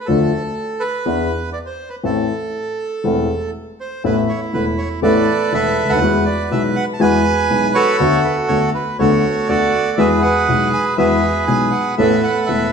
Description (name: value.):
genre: tango.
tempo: 121 BPM.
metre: 4/4.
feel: rubato.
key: A minor, A major from 4.0 s.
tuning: A4 = 440 Hz.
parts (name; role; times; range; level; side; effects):
bandoneon; melody; 0.0-12.7 s; E4 to A5; -18 LUFS; right 3 dB; none.
warm concert grand piano; accompaniment; 0.1-12.7 s; E1 to A4; -17 LUFS; left 2 dB; none.
room: wet stone room reverb, RT60 1.4 s.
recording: band playing live in one room.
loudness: -14 LUFS.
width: side -6 dB against mid.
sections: 0.0-4.0 A section; 4.0-12.7 B section.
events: none.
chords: 0.1 Dm; 1.1 E7; 2.0 Am; 4.0 Asus2; 6.0 Eadd9; 8.0 Bm7/D; 10.0 Eadd9; 12.0 Asus2.